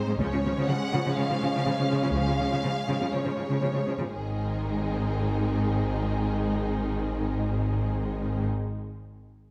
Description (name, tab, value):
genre	cinematic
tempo	122 BPM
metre	4/4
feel	straight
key	Ab major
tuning	A4 = 439 Hz
part	warm symphonic violin section	melody	0.0-8.5 s	Ab4 to Gb5	-37 LUFS	equal	none
part	warm symphonic violin section	second line	0.0-8.5 s	C4 to Eb4	-38 LUFS	equal	none
part	warm symphonic viola section	accompaniment	0.1-8.5 s	Eb3 to Ab3	-35 LUFS	equal	none
part	rich symphonic cello section	bass	0.1-8.5 s	Ab2 to Db3	-32 LUFS	equal	none
part	rich symphonic double bass section	bass	0.2-8.5 s	Ab1 to Db2	-33 LUFS	equal	none
room	moderate scoring stage reverb, RT60 1.8 s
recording	none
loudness	-28 LUFS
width	mono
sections	0.0-4.1 A section; 4.1-8.1 B section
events	none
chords	0.2 Db; 4.1 Ab